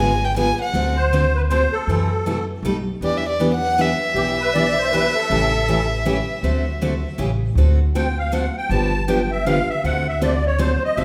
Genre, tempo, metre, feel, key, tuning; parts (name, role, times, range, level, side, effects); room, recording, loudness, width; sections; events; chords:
acoustic string swing (jazz manouche); 158 BPM; 3/4; swing 63% on 8ths; D mixolydian; A4 = 440 Hz
warm violin; melody; 0.0-1.0, 3.0-7.2 s; D5 to G#5; -24 LUFS; equal
picked steel-string acoustic guitar; accompaniment; 0.0-11.0 s; B2 to A4; -25 LUFS; equal
upright bass; bass; 0.0-11.0 s; G1 to F#2; -24 LUFS; equal
musette accordion; second line; 1.0-5.9, 8.0-11.0 s; G4 to A5; -25 LUFS; equal
wet recital hall reverb, RT60 1.4 s; recorded in a church or concert hall; -20 LUFS; mono
0.0-7.6 A section; 7.6-11.0 B section
accordion solo 7.6-11.0
0.0 G#dim7; 0.7 D7; 1.9 F#m7b5; 2.6 Baug7; 3.0 Em7; 5.3 A7; 6.4 D7; 7.2 A7; 7.6 D7; 8.7 G7; 9.8 D7